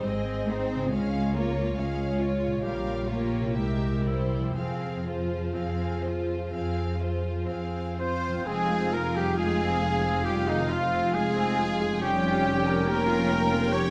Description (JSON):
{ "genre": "classical", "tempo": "59-72 BPM", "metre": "4/4", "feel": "rubato", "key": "F minor", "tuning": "A4 = 439 Hz", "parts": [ { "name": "warm studio violin section", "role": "melody", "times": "0.0-13.9 s", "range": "C5 to G5", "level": "-40 LUFS", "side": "equal", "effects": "none" }, { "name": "rich chamber violin section", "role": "second line", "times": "0.0-13.9 s", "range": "Eb4 to Db5", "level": "-38 LUFS", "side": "equal", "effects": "none" }, { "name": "rich chamber viola section", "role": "accompaniment", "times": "0.0-13.9 s", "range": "Ab3 to Bb4", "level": "-37 LUFS", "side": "equal", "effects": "none" }, { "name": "mellow French horn section", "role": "sustained chords", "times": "0.0-13.9 s", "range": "Eb3 to C5", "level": "-35 LUFS", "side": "equal", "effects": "none" }, { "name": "concert harp", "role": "arpeggios", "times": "0.0-13.9 s", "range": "Ab2 to Bb4", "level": "-37 LUFS", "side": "equal", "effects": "none" }, { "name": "warm chamber cello section", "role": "bass", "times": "0.0-13.9 s", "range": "F2 to C4", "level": "-36 LUFS", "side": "equal", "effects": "none" }, { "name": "dark chamber double bass section", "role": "bass", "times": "0.1-13.9 s", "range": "F1 to F2", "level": "-36 LUFS", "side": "equal", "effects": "none" }, { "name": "bright wooden flute", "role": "second line", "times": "8.0-13.9 s", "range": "Eb5 to Db6", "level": "-36 LUFS", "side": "equal", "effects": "none" }, { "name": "warm oboe", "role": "second line", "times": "8.0-13.9 s", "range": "Eb4 to Db5", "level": "-37 LUFS", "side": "equal", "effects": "none" }, { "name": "clear trumpet", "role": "stabs", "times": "8.0-13.9 s", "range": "Eb4 to Db5", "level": "-34 LUFS", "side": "equal", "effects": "none" }, { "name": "clear trombone section", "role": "sustained chords", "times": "8.5-13.9 s", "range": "F3 to F4", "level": "-37 LUFS", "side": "equal", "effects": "none" }, { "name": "mellow tuba", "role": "bass", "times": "8.5-13.9 s", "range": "F1", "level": "-36 LUFS", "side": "equal", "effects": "none" } ], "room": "moderate scoring stage reverb, RT60 1.5 s", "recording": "none", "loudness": "-27 LUFS", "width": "mono", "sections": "0.0-8.5 A section; 8.5-13.9 A section", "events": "none", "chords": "0.0 Ab; 0.9 Db; 2.6 Gm7b5/Bb; 3.6 C7; 4.6 Fm; 12.0 Gm7b5/F" }